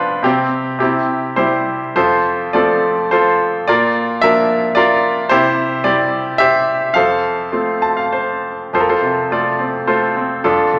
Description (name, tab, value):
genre	classical, lyrical solo piano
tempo	96-113 BPM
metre	3/4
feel	rubato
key	F major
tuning	A4 = 440 Hz
part	bright baby grand piano	solo	0.0-10.8 s	F2 to A5	-16 LUFS	equal	none
room	wet recital hall reverb, RT60 1.7 s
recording	none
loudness	-16 LUFS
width	mono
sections	0.0-8.7 A section; 8.7-10.8 A section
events	grand piano fill 7.5-8.7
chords	0.2 N.C.; 0.8 C; 2.0 F; 3.7 Bb; 5.3 C; 7.0 F